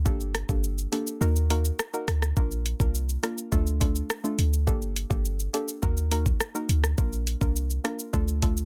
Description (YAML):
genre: dancehall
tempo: 104 BPM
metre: 4/4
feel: straight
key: Bb major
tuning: A4 = 435 Hz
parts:
  - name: clean 808-style bass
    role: bass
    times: 0.0-8.6 s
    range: G1 to Eb2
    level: -28 LUFS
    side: equal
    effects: none
  - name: soft round pluck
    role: accompaniment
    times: 0.1-8.6 s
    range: A3 to Bb4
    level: -35 LUFS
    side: equal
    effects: chorus
  - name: island pop drum kit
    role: drums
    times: 0.1-8.7 s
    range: hi-hat, kick drum, rim click, shaker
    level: -30 LUFS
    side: equal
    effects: none
room: little or no reverb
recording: dense, heavily limited modern master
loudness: -27 LUFS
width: mono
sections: 0.0-8.7 A section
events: kick muted 1.2-2.4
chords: 0.1 Gmadd9; 1.2 Ebm; 2.4 Bb; 3.5 Dm; 4.7 Gmadd9; 5.8 Ebm; 7.0 Bb; 8.1 Dm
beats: | 0.06 0.64 1.21 1.79 | 2.37 2.94 3.52 4.10 | 4.67 5.25 5.83 6.40 | 6.98 7.56 8.13